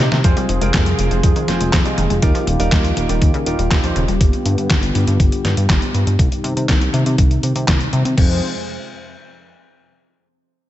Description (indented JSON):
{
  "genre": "italo disco",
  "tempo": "121 BPM",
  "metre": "4/4",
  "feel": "straight",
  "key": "F minor",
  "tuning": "A4 = 440 Hz",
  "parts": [
    { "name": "warm analog pad", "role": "sustained chords", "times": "0.0-8.4 s", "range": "C3 to C5", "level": "-23 LUFS", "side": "left 1 dB", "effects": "chorus" },
    { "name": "analog pluck", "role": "arpeggios", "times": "0.0-4.2 s", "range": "Eb2 to Ab3", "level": "-25 LUFS", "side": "left 2 dB", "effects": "chorus, digital delay" },
    { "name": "clear baby grand piano", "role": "stabs", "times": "0.0-4.0 s", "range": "C4 to Eb5", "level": "-25 LUFS", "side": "right 4 dB", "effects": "digital delay" },
    { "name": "chorused synth bass", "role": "bass", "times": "0.0-8.4 s", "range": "Eb1 to C3", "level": "-19 LUFS", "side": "equal", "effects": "digital delay" },
    { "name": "detuned 8-bit digital drum machine", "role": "drums", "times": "0.1-8.3 s", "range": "crash cymbal, handclaps, hi-hat, snare drum", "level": "-22 LUFS", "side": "equal", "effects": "overdrive, gated reverb" },
    { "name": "electronic kick drum", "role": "drums", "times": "0.2-8.3 s", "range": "none", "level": "-16 LUFS", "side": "equal", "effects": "overdrive" }
  ],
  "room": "little or no reverb",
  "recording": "nothing above 8.0 kHz",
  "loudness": "-14 LUFS",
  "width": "side -13 dB against mid",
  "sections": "0.2-8.2 A section; 8.2-10.2 B section",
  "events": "drum fill 0.0; filter sweep on analog synth pad 0.2-8.2",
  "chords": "0.2 Fm; 2.2 Ebadd9; 4.2 G7; 6.2 Cm; 8.2 Fm"
}